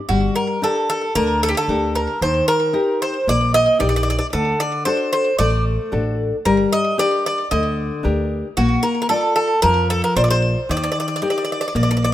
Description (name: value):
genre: greek folk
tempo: 113 BPM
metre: 4/4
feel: straight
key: unclear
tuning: A4 = 444 Hz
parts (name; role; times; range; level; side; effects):
- Greek bouzouki; melody; 0.1-12.1 s; F#4 to Eb5; -19 LUFS; right 1 dB; slapback echo
- nylon-string guitar; accompaniment; 0.1-12.1 s; D3 to D5; -22 LUFS; left 3 dB; none
- upright bass; bass; 0.1-12.1 s; G1 to F2; -21 LUFS; right 1 dB; none
room: light reverb, small room ambience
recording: rough home demo mix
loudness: -16 LUFS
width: side -13 dB against mid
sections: 0.0-12.1 A section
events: none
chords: 0.1 Gm; 2.2 Eb; 4.3 D; 6.5 Gm; 8.6 Bb; 10.7 Eb